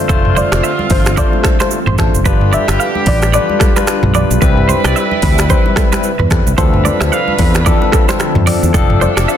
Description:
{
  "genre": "afrobeats",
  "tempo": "111 BPM",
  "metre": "4/4",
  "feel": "swing 58% on 16ths",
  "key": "unclear",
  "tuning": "A4 = 440 Hz",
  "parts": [
    { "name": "barky tine electric piano", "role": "accompaniment", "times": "0.0-9.3 s", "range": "F3 to C5", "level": "-18 LUFS", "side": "left 8 dB", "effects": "none" },
    { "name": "ethereal airy pad", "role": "sustained chords", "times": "0.0-9.4 s", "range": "C3 to E5", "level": "-23 LUFS", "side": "right 1 dB", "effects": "ensemble chorus, built-in reverb" },
    { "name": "warm horn section", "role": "second line", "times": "0.1-9.4 s", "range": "D3 to B4", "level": "-20 LUFS", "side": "right 3 dB", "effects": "none" },
    { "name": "electric guitar through a small old amp", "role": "riff", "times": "0.1-9.4 s", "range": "A4 to F5", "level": "-20 LUFS", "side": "right 6 dB", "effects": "digital delay" },
    { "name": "fretless electric bass", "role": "bass", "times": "0.1-9.3 s", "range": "F1 to F2", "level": "-15 LUFS", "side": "equal", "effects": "none" },
    { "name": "afro-pop drum kit", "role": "drums", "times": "0.1-9.4 s", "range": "finger snaps, hi-hat, kick drum, rim click, shaker, toms", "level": "-14 LUFS", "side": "equal", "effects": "soft clipping on snare" },
    { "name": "congas", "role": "percussion", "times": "0.1-9.2 s", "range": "none", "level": "-24 LUFS", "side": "right 3 dB", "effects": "none" },
    { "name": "soft round pluck", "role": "melody", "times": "0.4-4.3, 9.0-9.2 s", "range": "A4 to E5", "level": "-21 LUFS", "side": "left 2 dB", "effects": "chorus, digital delay" }
  ],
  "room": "light reverb, digital ambience",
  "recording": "dense, heavily limited modern master",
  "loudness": "-10 LUFS",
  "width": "side -10 dB against mid",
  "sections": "0.1-9.4 A section",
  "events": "none",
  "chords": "0.1 F6; 2.3 G7; 4.4 Cmaj7; 6.6 Dm7; 8.7 F6"
}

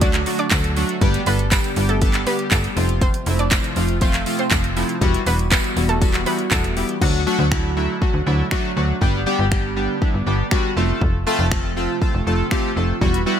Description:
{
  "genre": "dance-pop",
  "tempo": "120 BPM",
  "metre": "4/4",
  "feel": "straight",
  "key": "unclear",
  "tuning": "A4 = 437 Hz",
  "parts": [
    { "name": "analog pluck", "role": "melody", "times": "0.0-6.9 s", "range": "A3 to D5", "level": "-27 LUFS", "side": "right 2 dB", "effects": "chorus, sidechain pumping" },
    { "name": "chorused retro synth keys", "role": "accompaniment", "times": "0.0-13.4 s", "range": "F3 to A4", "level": "-22 LUFS", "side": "left 1 dB", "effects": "sidechain pumping" },
    { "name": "airy breathy pad", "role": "sustained chords", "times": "0.0-13.4 s", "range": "C3 to G4", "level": "-28 LUFS", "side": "right 3 dB", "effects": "chorus, sidechain pumping" },
    { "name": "slap-like FM bass", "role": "bass", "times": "0.0-13.3 s", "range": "E1 to D2", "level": "-21 LUFS", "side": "equal", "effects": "sidechain pumping" },
    { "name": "house drum kit", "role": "drums", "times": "0.0-13.3 s", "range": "crash cymbal, finger snaps, handclaps, hi-hat, kick drum", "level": "-20 LUFS", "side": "equal", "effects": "gated reverb" },
    { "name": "tambourine", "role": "percussion", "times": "0.0-6.6 s", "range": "none", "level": "-35 LUFS", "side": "right 11 dB", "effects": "none" }
  ],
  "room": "light reverb",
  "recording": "bright 1980s-style digital production",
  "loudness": "-17 LUFS",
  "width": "side -9 dB against mid",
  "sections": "0.0-7.0 A section; 7.0-13.4 B section",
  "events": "none",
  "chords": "0.0 D; 1.0 G; 2.8 F; 5.0 Emadd9; 7.0 D; 9.0 G; 10.8 F"
}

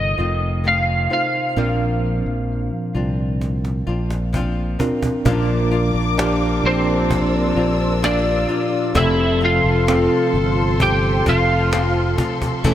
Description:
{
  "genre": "pop ballad",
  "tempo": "65 BPM",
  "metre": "4/4",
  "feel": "straight",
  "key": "unclear",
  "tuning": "A4 = 440 Hz",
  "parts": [
    { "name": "lightly driven lead guitar", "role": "melody", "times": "0.0-12.2 s", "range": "C4 to G5", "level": "-21 LUFS", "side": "equal", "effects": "ensemble chorus" },
    { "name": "tine electric piano", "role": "accompaniment", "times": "0.0-12.7 s", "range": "Bb2 to C5", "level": "-22 LUFS", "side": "right 2 dB", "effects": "medium stereo tremolo" },
    { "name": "flamenco guitar", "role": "arpeggios", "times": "0.0-12.7 s", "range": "F2 to A4", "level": "-27 LUFS", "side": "left 4 dB", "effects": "none" },
    { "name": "fingered electric bass", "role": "bass", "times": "0.0-12.7 s", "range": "E1 to C2", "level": "-21 LUFS", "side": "equal", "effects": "none" },
    { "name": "cajon", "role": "drums", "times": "3.4-12.7 s", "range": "none", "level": "-25 LUFS", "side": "equal", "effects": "none" },
    { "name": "warm French horn section", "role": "second line", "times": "5.3-12.7 s", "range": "D4 to A4", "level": "-26 LUFS", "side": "left 4 dB", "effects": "digital delay" },
    { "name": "warm studio string section", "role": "sustained chords", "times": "5.3-12.7 s", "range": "A4 to E6", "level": "-27 LUFS", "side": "left 3 dB", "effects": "none" }
  ],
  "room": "moderate lush hall reverb, RT60 2.8 s",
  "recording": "bright 1980s-style digital production",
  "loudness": "-16 LUFS",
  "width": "side -11 dB against mid",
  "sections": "0.0-5.3 A section; 5.3-12.7 B section",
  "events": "drum fill 3.4-5.3",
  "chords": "0.0 F7; 1.6 Bbadd9; 5.3 Bb; 9.0 F"
}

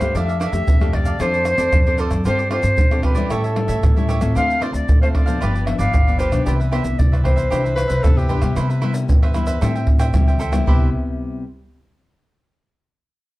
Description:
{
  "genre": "samba and choro",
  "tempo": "114 BPM",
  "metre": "4/4",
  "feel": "straight",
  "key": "C major",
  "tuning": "A4 = 440 Hz",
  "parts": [
    { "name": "silver concert flute", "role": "melody", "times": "0.0-8.3 s", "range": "A4 to F5", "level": "-22 LUFS", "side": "equal", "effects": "none" },
    { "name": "cavaquinho", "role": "accompaniment", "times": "0.0-10.9 s", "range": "D4 to G5", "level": "-28 LUFS", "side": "right 4 dB", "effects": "none" },
    { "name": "nylon-string guitar", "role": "accompaniment", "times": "0.0-11.4 s", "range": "G2 to A4", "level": "-25 LUFS", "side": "left 3 dB", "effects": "none" },
    { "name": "upright bass", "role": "bass", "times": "0.0-10.9 s", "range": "G1 to C3", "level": "-22 LUFS", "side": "equal", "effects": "none" },
    { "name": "tube shaker, pandeiro, tamborim and surdo", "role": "percussion", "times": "0.0-10.8 s", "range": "none", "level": "-18 LUFS", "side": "equal", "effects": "none" },
    { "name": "breathy tenor saxophone", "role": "second line", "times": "7.8-10.9 s", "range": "G4 to B4", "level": "-25 LUFS", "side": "left 2 dB", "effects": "none" }
  ],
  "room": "moderate large studio reverb, RT60 0.9 s",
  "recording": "dark, warm production",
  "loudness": "-15 LUFS",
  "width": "side -18 dB against mid",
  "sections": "0.0-8.6 A section; 8.6-10.7 B section; 10.7-12.8 C section",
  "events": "none",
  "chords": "0.1 F69; 1.2 Dm7/F; 2.2 G9sus4; 3.3 A7; 4.4 Dm7; 5.4 G7; 6.5 Cmaj9; 8.6 Cmaj7; 9.6 Am7; 10.7 Cmaj7"
}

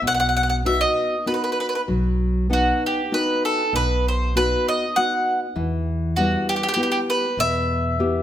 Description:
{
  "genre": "italian folk, Italian serenade",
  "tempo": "98 BPM",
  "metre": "3/4",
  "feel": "rubato",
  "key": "unclear",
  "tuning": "A4 = 439 Hz",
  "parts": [
    { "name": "nylon-string guitar", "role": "accompaniment", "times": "0.0-8.2 s", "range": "B2 to F#5", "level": "-24 LUFS", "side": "left 2 dB", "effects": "none" },
    { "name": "upright bass", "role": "bass", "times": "0.0-8.2 s", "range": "B1 to E2", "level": "-24 LUFS", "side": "right 1 dB", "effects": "none" },
    { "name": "mandolin", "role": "melody", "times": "0.1-8.2 s", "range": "F#4 to F#5", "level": "-21 LUFS", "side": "equal", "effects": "none" }
  ],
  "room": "moderate recital hall reverb, RT60 1.8 s",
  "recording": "none",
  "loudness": "-19 LUFS",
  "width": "side -11 dB against mid",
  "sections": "0.0-8.2 A section",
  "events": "none",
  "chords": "0.0 B; 5.6 Em"
}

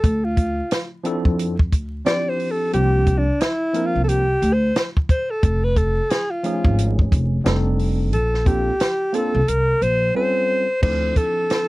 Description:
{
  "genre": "hip hop, jazz-hop",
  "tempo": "89 BPM",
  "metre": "4/4",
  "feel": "swing 61% on 16ths",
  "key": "D minor",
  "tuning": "A4 = 436 Hz",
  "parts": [
    { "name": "breathy alto saxophone", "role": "melody", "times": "0.0-11.7 s", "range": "D4 to D5", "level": "-21 LUFS", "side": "equal", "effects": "none" },
    { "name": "upright bass", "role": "bass", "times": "0.0-11.1 s", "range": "F1 to F2", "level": "-20 LUFS", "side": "equal", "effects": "none" },
    { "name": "compact cocktail drum kit", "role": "drums", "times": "0.0-11.7 s", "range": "crash cymbal, hi-hat, kick drum, snare drum", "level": "-19 LUFS", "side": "equal", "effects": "none" },
    { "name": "tine electric piano", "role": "accompaniment", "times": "1.0-11.7 s", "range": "F3 to Bb4", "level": "-24 LUFS", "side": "equal", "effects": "overdrive, fast stereo tremolo" }
  ],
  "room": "light reverb",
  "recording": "vinyl crackle",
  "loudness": "-17 LUFS",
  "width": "side -20 dB against mid",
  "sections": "0.0-10.8 A section",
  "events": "alto saxophone solo 0.0-10.8; silent gap 10.2-10.8",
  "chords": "0.0 Dm9; 2.7 C9sus4; 5.4 F7alt; 7.5 F13; 8.1 Bbmaj9; 10.2 A7alt; 10.8 Dm9"
}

